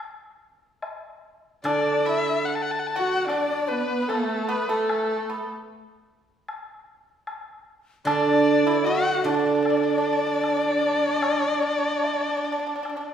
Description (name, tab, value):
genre	chinese traditional, Chinese chamber ensemble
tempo	75 BPM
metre	4/4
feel	rubato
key	D gong mode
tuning	A4 = 440 Hz
part	woodblock	percussion	0.0-13.0 s	none	-35 LUFS	left 2 dB	none
part	guzheng	accompaniment	1.6-11.6 s	D3	-25 LUFS	right 5 dB	none
part	warm erhu	melody	1.7-13.1 s	A4 to A5	-26 LUFS	left 3 dB	none
part	breathy xiao	second line	1.7-13.1 s	D4 to F#5	-29 LUFS	left 3 dB	none
part	pipa	second line	1.7-13.0 s	A3 to F#4	-30 LUFS	right 3 dB	none
part	rich horsehead fiddle	second line	1.7-13.1 s	A3 to F#4	-28 LUFS	right 2 dB	none
room	wet recital hall reverb, RT60 1.5 s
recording	heard from further back in the room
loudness	-21 LUFS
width	side -8 dB against mid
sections	0.0-13.1 A section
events	none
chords	none